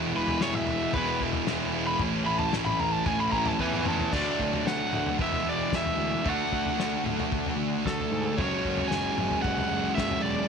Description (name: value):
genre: indie rock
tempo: 113 BPM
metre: 4/4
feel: straight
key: unclear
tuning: A4 = 441 Hz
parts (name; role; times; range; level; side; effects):
- thick fuzz guitar; riff; 0.0-10.5 s; A2 to F#4; -28 LUFS; right 1 dB; distortion
- fuzz picked electric bass; bass; 0.0-10.4 s; E1 to G#2; -34 LUFS; right 1 dB; overdrive
- crunchy overdriven guitar; melody; 0.2-10.5 s; A4 to B5; -30 LUFS; equal; tape echo
- loose indie drum kit; drums; 0.3-10.2 s; crash cymbal, kick drum, snare drum, toms; -33 LUFS; left 3 dB; none
room: light reverb, small room reverb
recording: 1960s-style stereo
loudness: -25 LUFS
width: side -6 dB against mid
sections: 0.0-4.1 A section; 4.1-10.5 B section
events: overdriven electric guitar solo 0.0-4.1; drum fill 3.6-4.1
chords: 0.0 E; 2.0 Aadd9; 4.1 D; 5.2 E7; 6.2 D; 8.4 F#sus2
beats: 0.41 0.94 1.47 | 2.00 2.53 3.06 3.59 | 4.12 4.66 5.19 5.72 | 6.25 6.78 7.31 7.85 | 8.38 8.91 9.44 9.97